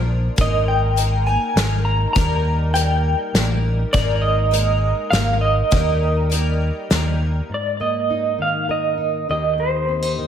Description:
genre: indie folk with a building arrangement.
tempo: 101 BPM.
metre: 3/4.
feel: straight.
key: unclear.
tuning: A4 = 440 Hz.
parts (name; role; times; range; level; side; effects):
electric guitar through a small old amp; melody; 0.0-10.1 s; C5 to Bb5; -21 LUFS; right 2 dB; tremolo, ping-pong delay.
picked twelve-string acoustic guitar; accompaniment; 0.0-7.5 s; Eb3 to Bb4; -26 LUFS; left 2 dB; analog chorus.
fingered electric bass; bass; 0.0-7.4 s; Ab1 to Eb2; -19 LUFS; equal; none.
loose indie drum kit; drums; 0.4-7.0 s; hi-hat, kick drum, snare drum; -22 LUFS; equal; none.
fingerpicked plugged-in steel-string acoustic guitar; accompaniment; 7.5-10.3 s; Eb2 to Bb4; -25 LUFS; left 1 dB; lush chorus.
room: light reverb, studio ambience.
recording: none.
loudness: -17 LUFS.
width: side -8 dB against mid.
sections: 0.0-7.5 A section; 7.5-10.3 B section.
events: none.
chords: 0.4 Absus2; 2.2 Eb; 3.9 Absus2; 5.7 Eb; 7.5 Absus2; 9.3 Eb.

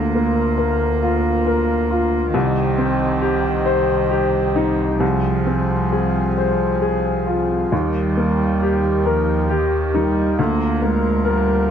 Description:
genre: neoclassical piano and strings.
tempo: 45 BPM (dotted quarters).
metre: 6/8.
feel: rubato.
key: Eb major.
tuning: A4 = 440 Hz.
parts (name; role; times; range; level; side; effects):
warm cello; second line; 0.0-11.7 s; Eb3 to Bb3; -23 LUFS; right 6 dB; none.
clear upright piano; accompaniment; 0.0-11.7 s; C2 to C5; -19 LUFS; left 2 dB; none.
pedal harmonium; sustained chords; 0.0-11.7 s; Bb3 to Bb4; -27 LUFS; right 1 dB; none.
dark double bass; bass; 0.0-11.7 s; C2 to Eb2; -23 LUFS; equal; none.
room: light reverb.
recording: dark, warm production.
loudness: -16 LUFS.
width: side -8 dB against mid.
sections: 0.0-11.7 A section.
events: none.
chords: 0.0 Bb/D; 2.4 Cm; 5.0 Ab6/C; 7.7 Eb; 10.4 Bb/D.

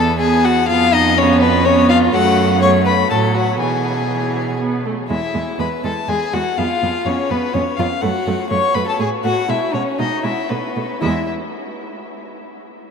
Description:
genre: quick classical-period movement for string quartet.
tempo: 122 BPM.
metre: 3/4.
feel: straight.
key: E major.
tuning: A4 = 439 Hz.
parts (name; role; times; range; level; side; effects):
rich violin; melody; 0.0-11.3 s; B4 to C#6; -20 LUFS; left 7 dB; none.
rich violin; second line; 0.0-11.3 s; B3 to C#5; -20 LUFS; left 2 dB; none.
rich viola; accompaniment; 0.0-11.3 s; E3 to B3; -21 LUFS; right 2 dB; none.
dark cello; bass; 0.0-11.3 s; E2 to B2; -21 LUFS; right 5 dB; none.
room: wet huge ambient reverb, RT60 8.3 s.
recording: in a vast, echoing space.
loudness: -14 LUFS.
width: side -6 dB against mid.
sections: 0.0-11.0 A section; 11.0-12.5 B section.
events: none.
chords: 0.0 E5; 0.7 C#9/E#; 2.1 F#m; 3.1 F#m/A; 3.6 E/B; 4.6 Asus2/B; 5.1 E; 6.6 C#7/E#; 8.0 F#m; 9.0 F#m/A; 9.5 C#m9/B; 10.5 Asus2/B; 11.0 E.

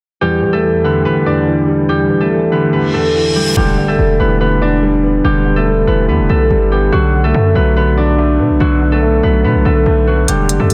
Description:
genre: hip hop, drill.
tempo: 143 BPM.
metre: 4/4.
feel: half-time.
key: E minor.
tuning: A4 = 444 Hz.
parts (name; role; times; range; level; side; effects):
concert harp; melody; 0.2-10.7 s; F#3 to D5; -16 LUFS; equal; low-pass filter.
dark baby grand piano; accompaniment; 0.2-10.7 s; E2 to B3; -19 LUFS; equal; low-pass filter.
glassy FM pad; sustained chords; 0.5-3.5 s; E2 to G3; -26 LUFS; equal; ensemble chorus, built-in reverb.
reverse cymbal and impact; sound effects; 2.9-5.2 s; none; -24 LUFS; equal; none.
distorted 808-style bass; bass; 3.6-10.7 s; E1 to B2; -16 LUFS; equal; distortion.
electronic hi-hat; drums; 10.3-10.7 s; none; -18 LUFS; equal; none.
room: light reverb, small room ambience.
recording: dense, heavily limited modern master.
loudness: -13 LUFS.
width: mono.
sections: 0.2-3.6 A section; 3.6-10.7 B section.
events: reverse cymbal 2.9-3.6; impact 3.6-5.2.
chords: 0.2 Em7; 6.9 Bm7.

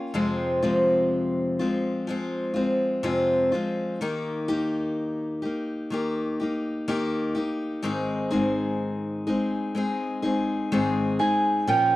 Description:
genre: folk.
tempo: 63 BPM.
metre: 4/4.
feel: straight.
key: unclear.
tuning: A4 = 439 Hz.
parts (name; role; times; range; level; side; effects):
Celtic harp; melody; 0.0-2.1, 11.2-12.0 s; C5 to Ab5; -25 LUFS; right 3 dB; none.
picked steel-string acoustic guitar; accompaniment; 0.0-12.0 s; F2 to Bb4; -24 LUFS; left 1 dB; none.
room: moderate booth ambience, RT60 0.2 s.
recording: dry, close 1970s-style studio recording.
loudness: -23 LUFS.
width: side -16 dB against mid.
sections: 0.0-12.0 A section.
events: none.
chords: 0.2 Fm; 4.0 Eb; 7.8 Ab.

